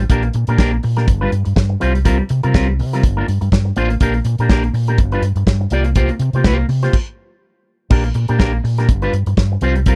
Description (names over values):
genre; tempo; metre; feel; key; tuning
disco; 123 BPM; 4/4; swing 56% on 16ths; unclear; A4 = 440 Hz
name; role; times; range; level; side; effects
electric guitar with an envelope filter; accompaniment; 0.0-10.0 s; G3 to D5; -22 LUFS; equal; none
fingered electric bass; bass; 0.0-10.0 s; G1 to C3; -19 LUFS; equal; none
warm soul drum kit; drums; 0.1-10.0 s; crash cymbal, hi-hat, kick drum, snare drum; -17 LUFS; equal; none
room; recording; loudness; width
small room ambience; dry, close 1970s-style studio recording; -16 LUFS; mono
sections
0.0-7.9 A section; 7.9-10.0 A section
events
stop 6.9-7.9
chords
0.1 Bb6; 1.1 G7; 1.8 C7sus4; 3.0 Gm7; 4.0 Bb6; 5.0 G7; 5.7 C7sus4; 6.9 N.C.; 7.9 Bb6; 8.9 G7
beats
| 0.10 0.59 1.08 1.56 | 2.05 2.54 3.03 3.52 | 4.01 4.50 4.99 5.47 | 5.96 6.45 6.94 7.42 | 7.91 8.40 8.89 9.38 | 9.87